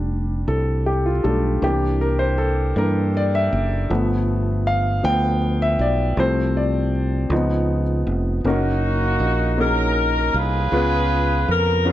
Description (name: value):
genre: slow gospel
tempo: 53 BPM (dotted quarters)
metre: 6/8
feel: straight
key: F major, F# major from 8.5 s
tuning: A4 = 440 Hz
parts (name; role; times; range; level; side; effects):
- warm grand piano; accompaniment; 0.0-11.9 s; C#3 to G5; -22 LUFS; left 1 dB; none
- fingered electric bass; bass; 0.0-11.9 s; F1 to G2; -21 LUFS; equal; none
- warm horn section; melody; 8.4-11.9 s; A#3 to B4; -21 LUFS; equal; none
room: light reverb, small room reverb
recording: tape saturation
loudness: -18 LUFS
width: side -13 dB against mid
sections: 0.0-8.5 A section; 8.5-11.9 B section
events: grand piano solo 0.0-8.5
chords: 0.0 F6; 1.6 C7; 3.9 G7; 6.2 F/C; 7.3 Db7; 8.5 F#6; 10.7 C#7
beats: 0.48 | 1.62 2.76 | 3.90 5.04 | 6.18 7.31 | 8.45 9.59 | 10.72 11.86